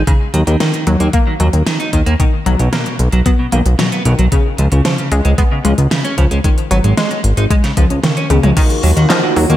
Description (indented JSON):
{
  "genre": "synthwave",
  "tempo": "113 BPM",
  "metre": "4/4",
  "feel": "straight",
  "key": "Eb minor",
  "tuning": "A4 = 440 Hz",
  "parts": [
    { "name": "fat analog bass", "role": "bass", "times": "0.0-9.6 s", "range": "Ab1 to Eb2", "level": "-12 LUFS", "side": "equal", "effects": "sidechain pumping" },
    { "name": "analog pluck", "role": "arpeggios", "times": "0.1-9.6 s", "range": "Db3 to B3", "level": "-19 LUFS", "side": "left 3 dB", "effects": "chorus, ping-pong delay, shimmer reverb" },
    { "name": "clean electric guitar", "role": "riff", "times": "0.1-9.6 s", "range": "B2 to Eb4", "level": "-20 LUFS", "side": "right 2 dB", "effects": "analog chorus, ping-pong delay" },
    { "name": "electronic kick drum", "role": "drums", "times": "0.1-8.7 s", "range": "none", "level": "-14 LUFS", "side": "equal", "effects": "small room ambience" },
    { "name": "pop drum kit", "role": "drums", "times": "0.1-9.6 s", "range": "crash cymbal, handclaps, hi-hat, snare drum, toms", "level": "-19 LUFS", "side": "equal", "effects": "small room ambience, gated reverb" },
    { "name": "chorused pulse-width pad", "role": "sustained chords", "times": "8.6-9.6 s", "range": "Eb3 to Gb4", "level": "-18 LUFS", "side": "right 2 dB", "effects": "sidechain pumping" }
  ],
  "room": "light reverb, digital ambience",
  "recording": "none",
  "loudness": "-11 LUFS",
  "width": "side -13 dB against mid",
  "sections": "0.0-8.6 A section",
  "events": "drum fill 8.3",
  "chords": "0.1 Ebm7; 2.2 Bmaj7; 4.3 Db7; 6.4 Ab7(no3); 7.5 Dbadd9; 8.6 Ebmadd9"
}